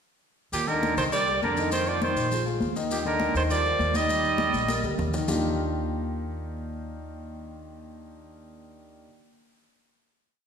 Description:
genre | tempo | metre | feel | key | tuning
Afro-Cuban jazz | 202 BPM | 4/4 | straight | Eb major | A4 = 441 Hz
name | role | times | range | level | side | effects
clear trumpet | melody | 0.5-5.0 s | G4 to Eb5 | -26 LUFS | right 2 dB | none
warm baritone saxophone | second line | 0.5-5.0 s | Bb2 to G3 | -32 LUFS | right 2 dB | none
upright bass | bass | 0.5-9.0 s | Bb1 to F2 | -32 LUFS | equal | none
congas | percussion | 0.5-5.4 s | none | -33 LUFS | left 1 dB | none
maracas | percussion | 0.5-5.3 s | none | -37 LUFS | left 4 dB | none
warm grand piano | accompaniment | 0.7-9.1 s | Eb3 to Eb5 | -31 LUFS | left 2 dB | none
room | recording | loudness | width
wet scoring stage reverb, RT60 1.6 s | recorded in a church or concert hall | -24 LUFS | side -7 dB against mid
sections
0.5-5.3 A section; 5.3-7.7 final chord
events
drum fill 4.5-5.3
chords
0.5 Eb5; 1.1 Cm9; 1.7 F5; 2.3 Bb5; 2.9 Ebmaj7; 5.3 Ebmaj9

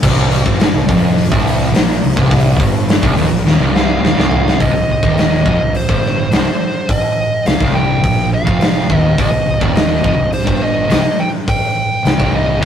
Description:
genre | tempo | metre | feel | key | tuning
stoner and doom metal | 105 BPM | 4/4 | straight | C minor | A4 = 440 Hz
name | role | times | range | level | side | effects
fuzz guitar | riff | 0.0-12.7 s | C2 to Bb2 | -16 LUFS | equal | distortion
fuzz fingered electric bass | bass | 0.0-12.7 s | C1 to Bb1 | -19 LUFS | equal | overdrive
big rock drum kit | drums | 0.0-12.7 s | crash cymbal, hi-hat, kick drum, snare drum, toms | -15 LUFS | right 1 dB | none
fuzz lead guitar | melody | 3.8-12.7 s | C5 to G5 | -18 LUFS | equal | distortion
room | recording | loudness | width
light reverb | rough rehearsal-room recording, tube saturation | -11 LUFS | side -9 dB against mid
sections
0.0-4.6 A section; 4.6-12.7 B section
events
drum fill 3.4-4.6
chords
0.0 Cm

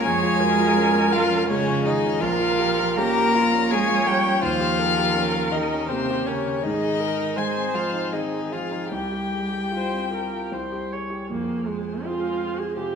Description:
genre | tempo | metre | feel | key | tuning
classical, slow romantic movement for piano quintet | 73-85 BPM | 3/4 | rubato | F minor | A4 = 440 Hz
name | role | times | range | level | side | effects
dark violin | melody | 0.0-13.0 s | C5 to Bb5 | -26 LUFS | left 5 dB | none
rich violin | second line | 0.0-13.0 s | C4 to Bb4 | -28 LUFS | left 3 dB | none
warm cello | second line | 0.0-13.0 s | C3 to Bb3 | -28 LUFS | right 4 dB | none
dark concert grand piano | accompaniment | 0.0-13.0 s | Bb1 to C5 | -27 LUFS | right 1 dB | none
dark viola | accompaniment | 0.0-13.0 s | Ab3 to Db5 | -27 LUFS | right 3 dB | none
room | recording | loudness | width
wet recital hall reverb, RT60 1.7 s | minimal, uncompressed stereo recording | -20 LUFS | side -6 dB against mid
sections
0.0-11.3 A section; 11.3-13.0 B section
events
none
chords
0.1 Db/F; 2.2 Bbm; 4.4 Eb7; 6.6 Ab; 8.9 Csus4; 10.5 C5; 11.3 Fm

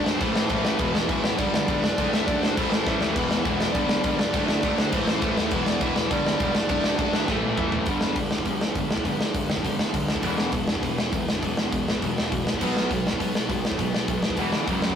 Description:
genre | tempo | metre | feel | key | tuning
punk rock | 203 BPM | 4/4 | straight | E minor | A4 = 440 Hz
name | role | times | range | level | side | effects
bluesy overdriven lead guitar | melody | 0.0-7.7 s | B4 to E5 | -31 LUFS | left 2 dB | distortion
crunchy overdriven guitar | riff | 0.0-15.0 s | E2 to D4 | -30 LUFS | right 6 dB | none
distorted electric guitar | riff | 0.0-15.0 s | E2 to D4 | -30 LUFS | left 6 dB | overdrive
heavy high-gain guitar | riff | 0.0-15.0 s | E2 to D4 | -32 LUFS | equal | distortion
fuzz picked electric bass | bass | 0.0-15.0 s | E1 to A2 | -32 LUFS | equal | overdrive
big rock drum kit | drums | 0.1-15.0 s | crash cymbal, hi-hat, kick drum, snare drum, toms | -25 LUFS | equal | none
room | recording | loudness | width
moderate studio reverb, RT60 0.5 s | rough rehearsal-room recording, warm saturation | -22 LUFS | side -8 dB against mid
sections
0.0-7.9 A section; 7.9-15.0 B section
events
drum fill 2.9, 7.3-7.9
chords
0.2 Am; 0.8 E5; 1.4 G5; 1.8 D/F#; 2.6 Am; 3.2 E5; 3.8 G5; 4.2 D/F#; 4.9 Am; 5.5 E5; 6.1 G5; 6.6 D/F#; 7.3 A5; 7.9 G5; 10.2 E5; 12.5 N.C.; 12.6 B5; 14.4 E5; 14.7 F#5

